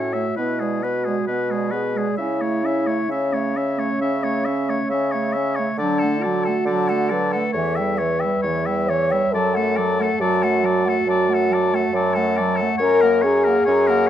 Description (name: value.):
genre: classical, slow romantic movement for wind quintet.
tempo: 68 BPM.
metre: 4/4.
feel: rubato.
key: unclear.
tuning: A4 = 438 Hz.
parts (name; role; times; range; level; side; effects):
mellow hollow concert flute; melody; 0.0-14.1 s; B4 to Bb5; -27 LUFS; left 8 dB; none.
clear oboe; second line; 0.0-14.1 s; G#4 to E5; -26 LUFS; left 3 dB; none.
dark French horn; accompaniment; 0.0-14.1 s; C#4 to C#5; -22 LUFS; equal; none.
warm clarinet; accompaniment; 0.0-14.1 s; E3 to Db4; -26 LUFS; right 6 dB; none.
clear bassoon; bass; 0.0-14.1 s; E2 to D3; -25 LUFS; right 1 dB; none.
room: light reverb.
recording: dark, warm production.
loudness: -18 LUFS.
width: side -10 dB against mid.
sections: 0.0-14.1 A section.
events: none.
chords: 0.4 G#dim/B; 2.2 A/C#; 5.8 D; 7.5 C#dim/E; 9.3 D/F#; 12.8 Gb.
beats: 0.37 1.28 | 2.19 3.11 4.01 4.90 | 5.79 6.67 7.55 8.45 | 9.33 10.20 11.07 11.95 | 12.82 13.69.